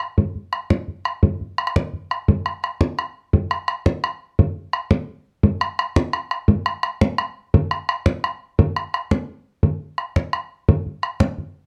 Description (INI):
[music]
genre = celtic folk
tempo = 114 BPM (dotted quarters)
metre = 6/8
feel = straight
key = none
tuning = none
[part]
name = bodhran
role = percussion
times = 0.0-11.4 s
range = none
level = -20 LUFS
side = equal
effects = none
[sound]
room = light reverb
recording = close, detailed microphones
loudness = -22 LUFS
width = mono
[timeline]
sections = 0.0-2.3 A section; 2.3-10.7 B section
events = none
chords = none